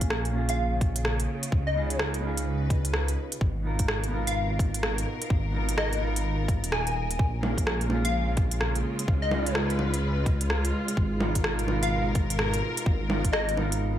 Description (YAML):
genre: future garage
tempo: 127 BPM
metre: 4/4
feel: swing 63% on 16ths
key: G# dorian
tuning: A4 = 438 Hz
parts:
  - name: mellow electric guitar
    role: accompaniment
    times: 0.0-14.0 s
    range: A#3 to A#4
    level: -35 LUFS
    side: right 2 dB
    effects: vintage 12-bit sampler grit, sidechain pumping, tape echo
  - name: rich symphonic string section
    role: sustained chords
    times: 0.0-14.0 s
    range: B2 to B4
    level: -34 LUFS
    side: equal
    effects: sidechain pumping
  - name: dark detuned saw bass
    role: bass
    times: 0.0-14.0 s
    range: D#1 to C#2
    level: -28 LUFS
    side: equal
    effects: tube saturation, sidechain pumping
  - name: electronic kick drum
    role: drums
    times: 0.0-13.3 s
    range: none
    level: -26 LUFS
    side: equal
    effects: overdrive
  - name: organic electronic drum kit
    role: drums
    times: 0.0-13.8 s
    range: bongos, hi-hat, rim click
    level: -30 LUFS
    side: right 1 dB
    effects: overdrive
  - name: plucky unison lead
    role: melody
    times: 0.5-13.6 s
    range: D#5 to G#5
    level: -33 LUFS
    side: left 2 dB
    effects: wide subtle chorus, cassette tape, dub echo
room: light reverb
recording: none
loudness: -24 LUFS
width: side -11 dB against mid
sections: 0.0-14.0 A section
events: none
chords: 0.0 A#m7; 1.5 C#7; 3.4 G#m69; 7.2 A#m7; 9.1 C#7; 11.0 G#m69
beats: 0.11 0.58 1.05 | 1.52 2.00 2.47 2.94 | 3.41 3.88 4.36 4.83 | 5.30 5.78 6.25 6.72 | 7.19 7.67 8.14 8.61 | 9.08 9.55 10.03 10.50 | 10.97 11.44 11.92 12.39 | 12.86 13.33 13.81